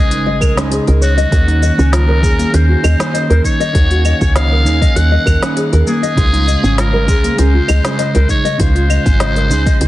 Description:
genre	organic downtempo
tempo	99 BPM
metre	4/4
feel	straight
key	Eb dorian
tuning	A4 = 440 Hz
part	trumpet with metal mute	melody	0.0-9.9 s	Gb4 to Gb5	-19 LUFS	equal	ping-pong delay
part	clean electric guitar	accompaniment	0.0-9.9 s	Db3 to C5	-20 LUFS	right 1 dB	spring reverb, sidechain pumping, ping-pong delay
part	nylon-string guitar	arpeggios	0.0-9.9 s	Bb3 to Eb5	-19 LUFS	left 1 dB	ping-pong delay
part	woody FM bass	bass	0.0-9.9 s	Ab1 to Eb2	-13 LUFS	equal	sidechain pumping
part	organic electronic drum kit	drums	0.1-9.9 s	claves, hi-hat, shaker, snare drum	-23 LUFS	equal	none
part	electronic kick drum	drums	0.4-9.8 s	none	-14 LUFS	equal	none
room	light reverb, digital ambience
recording	heavily compressed radio sound, multiband compression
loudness	-10 LUFS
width	side -16 dB against mid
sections	0.0-9.9 A section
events	none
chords	0.0 Dbmaj7(no3); 1.3 Ebm7; 6.2 Dbmaj7

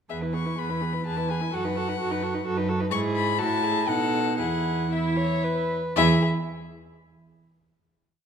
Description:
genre	quick classical-period movement for string quartet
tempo	112-130 BPM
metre	3/4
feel	rubato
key	E major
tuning	A4 = 439 Hz
part	rich violin	melody	0.1-6.2 s	E5 to C#6	-29 LUFS	left 10 dB	none
part	rich violin	second line	0.1-6.2 s	E4 to C#5	-31 LUFS	left 2 dB	none
part	warm viola	accompaniment	0.1-6.2 s	B3 to F#4	-30 LUFS	right 2 dB	none
part	rich cello	bass	0.1-6.2 s	E2 to B2	-27 LUFS	right 3 dB	none
room	wet recital hall reverb, RT60 1.8 s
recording	minimal, uncompressed stereo recording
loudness	-23 LUFS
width	side -7 dB against mid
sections	0.1-6.0 A section; 6.0-7.5 final chord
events	none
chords	0.1 E; 1.5 B7/F#; 2.9 E/G#; 3.4 F#m7/A; 3.9 B7; 4.4 E; 6.0 N.C.

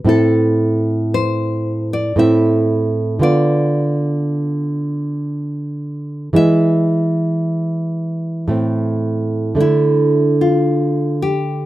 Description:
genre	romantic duo for nylon-string guitar and classical guitar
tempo	57 BPM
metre	3/4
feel	uneven beats, rubato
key	A minor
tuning	A4 = 439 Hz
part	nylon-string guitar	melody	0.0-11.7 s	E4 to E5	-22 LUFS	left 4 dB	none
part	nylon-string guitar	accompaniment	0.0-11.7 s	A2 to F4	-15 LUFS	right 1 dB	none
room	light reverb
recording	rough home demo mix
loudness	-14 LUFS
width	side -15 dB against mid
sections	0.0-11.7 A section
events	none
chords	0.1 Am; 3.2 Bdim/D; 6.4 E; 8.5 Am; 9.6 D5

